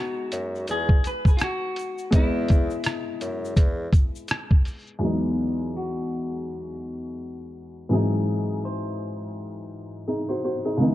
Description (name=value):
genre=lo-fi hip hop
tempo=83 BPM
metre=4/4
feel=swing 59% on 16ths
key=E major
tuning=A4 = 445 Hz
part: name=clean electric guitar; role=melody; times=0.0-10.4 s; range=E4 to B#4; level=-32 LUFS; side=left 2 dB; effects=low-pass filter, tape echo
part: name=warm upright piano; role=accompaniment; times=0.0-10.9 s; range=C#2 to D#5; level=-26 LUFS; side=equal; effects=low-pass filter
part: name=clear bassoon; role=bass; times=0.3-3.9 s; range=E2 to F#2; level=-30 LUFS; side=equal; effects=none
part: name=dusty soul sampler-style drum kit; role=drums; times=0.3-4.9 s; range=hi-hat, kick drum, rim click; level=-20 LUFS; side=equal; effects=none
part: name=egg shaker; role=percussion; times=0.3-5.0 s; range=none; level=-48 LUFS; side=left 6 dB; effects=none
room=light reverb, small room ambience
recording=cassette tape, low-pass filter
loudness=-22 LUFS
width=side -15 dB against mid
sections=0.0-5.0 A section; 5.0-10.9 B section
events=none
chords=0.0 Emaj9; 7.9 G#7b13